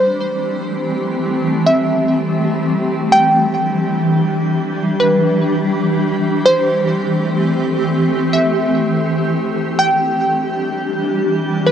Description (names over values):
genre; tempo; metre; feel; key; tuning
hip hop; free time; none; none; E minor; A4 = 435 Hz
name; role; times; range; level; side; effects
glassy wavetable pluck; melody; 0.0-11.7 s; B4 to G5; -18 LUFS; equal; chorus, low-pass filter, tape echo
granular cloud pad; sustained chords; 0.0-11.7 s; E3 to G4; -16 LUFS; equal; built-in reverb
room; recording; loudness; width
moderate shimmer reverb, RT60 6.3 s; dry, gritty hardware recording, nothing above 10.3 kHz; -14 LUFS; side -8 dB against mid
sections
0.0-3.1 A section; 3.1-11.7 B section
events
none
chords
0.0 Am7; 3.1 Em7; 6.5 Am7; 9.8 Em7